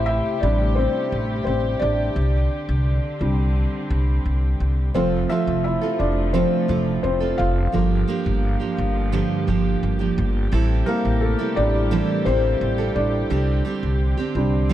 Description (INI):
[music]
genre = pop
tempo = 86 BPM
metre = 4/4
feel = straight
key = unclear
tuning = A4 = 441 Hz
[part]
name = felt-muted upright piano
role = accompaniment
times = 0.0-14.7 s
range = G3 to F5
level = -24 LUFS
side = left 2 dB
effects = none
[part]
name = warm studio string section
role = sustained chords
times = 0.0-14.7 s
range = C3 to G4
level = -30 LUFS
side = left 2 dB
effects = none
[part]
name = upright bass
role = bass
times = 0.0-14.7 s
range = F1 to C2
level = -22 LUFS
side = equal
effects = none
[part]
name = picked steel-string acoustic guitar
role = riff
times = 4.9-14.7 s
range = G2 to A4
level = -24 LUFS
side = right 6 dB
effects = none
[sound]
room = light reverb, small room ambience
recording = dark, warm production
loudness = -19 LUFS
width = side -12 dB against mid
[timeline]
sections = 0.0-14.7 A section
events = felt piano solo 0.0-14.7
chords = 0.0 Am7; 2.2 Csus2; 5.0 F; 7.7 Gm7; 10.5 Am7; 13.3 Csus2